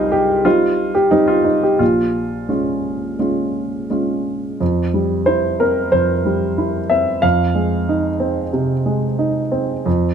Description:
neoclassical minimalist piano; 84-95 BPM; 4/4; rubato; F minor; A4 = 441 Hz
warm baby grand piano; solo; 0.0-10.1 s; Bb1 to F5; -15 LUFS; right 1 dB
moderate stone room reverb, RT60 1.1 s; -15 LUFS; side -7 dB against mid
0.0-4.6 A section; 4.6-10.1 B section
0.0 Cm; 1.8 Bbm7; 4.6 C/F; 7.2 Fm7

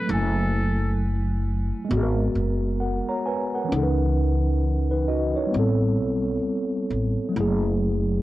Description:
lo-fi hip hop; 66 BPM; 4/4; swing 63% on 16ths; C# minor; A4 = 441 Hz
trumpet with metal mute; melody; 0.0-1.0 s; A4 to B4; -32 LUFS; left 1 dB; low-pass filter, tape echo
mellow tine electric piano; accompaniment; 0.0-8.2 s; E3 to A#5; -24 LUFS; equal; medium stereo tremolo, cassette tape, low-pass filter
upright bass; bass; 0.1-8.2 s; F#1 to C#2; -24 LUFS; equal
moderate small room reverb, RT60 0.5 s; worn, warbling old tape, cassette tape, warbly pitch drift; -21 LUFS; side -16 dB against mid
0.0-8.2 A section
0.1 F#m9; 1.9 G#m9; 3.7 C#m9; 5.5 Am9; 7.4 F#m9

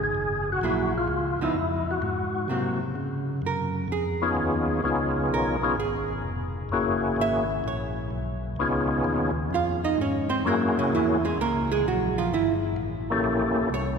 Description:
jazz; 128 BPM; 4/4; swing 68% on 8ths; Db mixolydian; A4 = 440 Hz
percussive tonewheel organ; melody; 0.0-13.7 s; Bb3 to A4; -26 LUFS; left 2 dB; slow rotary speaker, overdrive, chorus vibrato
tonewheel organ; bass; 0.0-14.0 s; F1 to Db3; -30 LUFS; equal; overdrive, chorus vibrato, slow rotary speaker
archtop guitar, miked and amplified; accompaniment; 0.6-14.0 s; Db3 to F5; -28 LUFS; right 4 dB
wet cathedral reverb, RT60 4.5 s; recorded in a church or concert hall; -23 LUFS; side -5 dB against mid
0.0-3.0 A section; 3.0-14.0 B section
hollow-body jazz guitar solo 3.0-14.0
0.1 Gb9; 1.1 Db9; 2.0 Ab9; 3.0 Db9; 6.7 Gb9; 8.6 Db9; 10.4 Gb9; 12.3 Gdim7

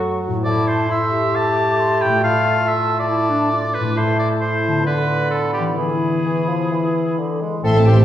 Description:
classical; 125-139 BPM; 4/4; rubato; A minor; A4 = 440 Hz
clear clarinet; second line; 0.0-8.0 s; D4 to A4; -24 LUFS; equal
concert flute; second line; 0.0-8.0 s; G5 to D6; -27 LUFS; left 2 dB
warm bassoon; accompaniment; 0.0-8.0 s; D3 to C4; -22 LUFS; right 1 dB
concert harp; arpeggios; 0.0-8.0 s; F#2 to E5; -22 LUFS; left 2 dB
clear oboe; second line; 0.4-8.0 s; G4 to A5; -22 LUFS; equal
warm symphonic viola section; accompaniment; 7.6-8.0 s; A3 to C4; -26 LUFS; right 1 dB
dark symphonic cello section; bass; 7.6-8.0 s; A2; -15 LUFS; right 2 dB
warm chamber double bass section; bass; 7.6-8.0 s; A1; -17 LUFS; right 2 dB
rich symphonic violin section; melody; 7.7-8.0 s; A5 to C6; -30 LUFS; left 2 dB
warm symphonic violin section; second line; 7.7-8.0 s; C5 to E5; -29 LUFS; left 3 dB
warm French horn section; sustained chords; 7.7-8.0 s; E3 to C4; -25 LUFS; left 2 dB
wet recital hall reverb, RT60 1.4 s; heard from further back in the room; -16 LUFS; side -11 dB against mid
0.0-7.6 A section
0.4 Am; 2.2 Dm/A; 4.0 Am; 4.9 Bdim/D; 5.8 E

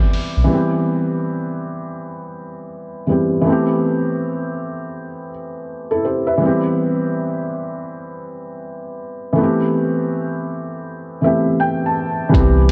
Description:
lo-fi hip hop; 81 BPM; 4/4; swing 64% on 16ths; C major; A4 = 440 Hz
felt-muted upright piano; accompaniment; 0.0-12.7 s; E3 to A5; -21 LUFS; equal; low-pass filter
trip hop sampler-style drum kit; drums; 0.1-0.3, 12.3-12.7 s; hi-hat, kick drum; -18 LUFS; equal
sub bass with octave; bass; 0.4-0.5, 12.3-12.7 s; B1 to C2; -16 LUFS; equal
granular cloud pad; sustained chords; 12.7 s; barely audible
moderate plate reverb, RT60 3.0 s; dreamy mix soaked in reverb, cassette tape; -19 LUFS; mono
0.5-12.3 A section
0.5 Cmaj7; 3.5 Am9; 6.4 Cmaj7; 9.4 Am9

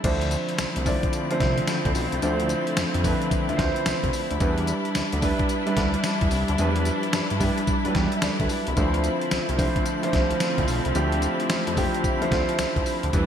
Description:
R&B, new jack swing; 110 BPM; 4/4; swing 64% on 16ths; D dorian; A4 = 439 Hz
warm concert grand piano; accompaniment; 0.0-13.3 s; F3 to G5; -26 LUFS; right 1 dB
warm symphonic string section; sustained chords; 0.0-13.3 s; D3 to E4; -28 LUFS; left 1 dB
fat analog bass; bass; 0.0-13.3 s; B1 to G2; -27 LUFS; equal
dusty soul sampler-style drum kit; drums; 0.0-13.3 s; crash cymbal, hi-hat, kick drum, snare drum, tambourine; -27 LUFS; equal; gated reverb
moderate lush hall reverb, RT60 2.1 s; bright 1980s-style digital production; -21 LUFS; side -8 dB against mid
0.0-13.3 A section
0.0 Dm9; 4.4 Em7; 8.8 Dm9

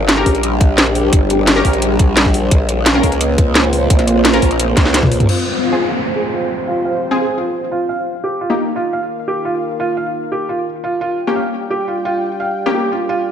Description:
dark technical drum and bass; 173 BPM; 4/4; straight; A4 = 440 Hz
dark analog pad; sustained chords; 0.0-13.3 s; G3 to G5; -20 LUFS; equal; chorus, sidechain pumping
growl bass; bass; 0.0-5.3 s; G1 to Db2; -17 LUFS; equal; chorus
drum and bass drum kit; drums; 0.1-5.4 s; crash cymbal, hi-hat, snare drum, toms; -15 LUFS; equal
orchestra-hit-like synth stab; stabs; 0.2-8.6, 11.3-12.8 s; Bb3 to Bb4; -20 LUFS; left 2 dB; built-in reverb, cassette tape, ping-pong delay
electronic kick drum; drums; 0.3-5.1 s; -13 LUFS; equal
felt-muted upright piano; arpeggios; 5.3-13.2 s; F4 to F5; -20 LUFS; right 2 dB; sidechain pumping, low-pass filter, ping-pong delay
downlifter; sound effects; 5.3-8.1 s; -23 LUFS; left 3 dB
light reverb, digital ambience; -13 LUFS; side -8 dB against mid
0.0-5.3 A section; 5.3-13.3 B section
drop 0.0-5.3; drum fill 4.8-5.3; filter sweep on felt piano 5.3-13.3
0.0 Gdim; 2.5 Bbm; 5.3 Fm; 8.1 Eb; 10.8 Gdim

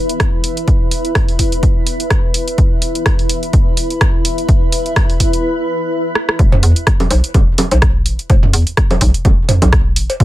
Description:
minimal techno; 126 BPM; 4/4; swing 56% on 16ths; A4 = 441 Hz
granular cloud pad; texture; 0.0-5.4 s; E4 to B5; -20 LUFS; equal; built-in reverb, sidechain pumping
punchy analog drum machine; drums; 0.1-10.2 s; hi-hat, rim click; -19 LUFS; right 1 dB
electronic kick drum; drums; 0.2-10.2 s; -13 LUFS; equal
hollow knocking FM bass; bass; 6.4-10.2 s; E1 to E2; -14 LUFS; equal; sidechain pumping
electronic toms, cowbell and bongos; percussion; 6.5-10.2 s; -16 LUFS; right 1 dB; overdrive, digital delay
light reverb; -11 LUFS; side -15 dB against mid
0.0-6.4 A section; 6.4-10.2 B section
build-up 0.0-6.4; stop 5.4-6.4; drum fill 6.2; drop 6.4-10.2
0.0 E5

